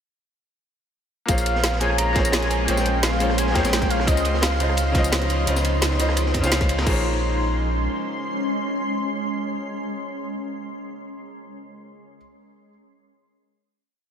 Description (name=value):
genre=liquid drum and bass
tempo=172 BPM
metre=4/4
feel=straight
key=Bb minor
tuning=A4 = 440 Hz
part: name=warm velvety synth lead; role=melody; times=1.3-5.1 s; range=Eb5 to Bb5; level=-27 LUFS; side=equal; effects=chorus, phaser, ping-pong delay
part: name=bright grand piano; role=accompaniment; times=1.3-12.2 s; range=Db3 to F5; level=-26 LUFS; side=left 1 dB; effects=tape echo
part: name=shimmering ambient pad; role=sustained chords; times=2.0-9.9 s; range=F3 to C6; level=-28 LUFS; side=equal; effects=chorus, built-in reverb, sidechain pumping
part: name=warm sub bass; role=bass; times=1.3-7.9 s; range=Bb1 to F2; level=-24 LUFS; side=equal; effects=tube saturation
part: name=crunchy breakbeat drum kit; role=drums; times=1.3-6.9 s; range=ride cymbal, snare drum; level=-30 LUFS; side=equal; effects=high-pass filter on cymbals, high-pass filter on snare, high-pass filter on room
part: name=drum and bass drum kit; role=drums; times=1.3-6.9 s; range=crash cymbal, hi-hat, rim click, snare drum, tambourine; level=-26 LUFS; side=equal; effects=none
part: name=electronic kick drum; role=drums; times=1.3-6.9 s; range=none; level=-22 LUFS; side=equal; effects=none
room=moderate huge ambient reverb, RT60 4.3 s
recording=dreamy mix soaked in reverb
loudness=-20 LUFS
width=side -8 dB against mid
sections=1.3-6.9 drop; 6.9-9.7 final chord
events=drop 1.3-6.9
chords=1.3 Bbm9; 4.1 Dbmaj9; 6.9 Bbm9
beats=| 1.28 1.63 1.98 2.33 | 2.68 3.03 3.38 3.73 | 4.08 4.42 4.77 5.12 | 5.47 5.82 6.17 6.52 | 6.87 7.21 7.56 7.91 | 8.26 8.61 8.96 9.31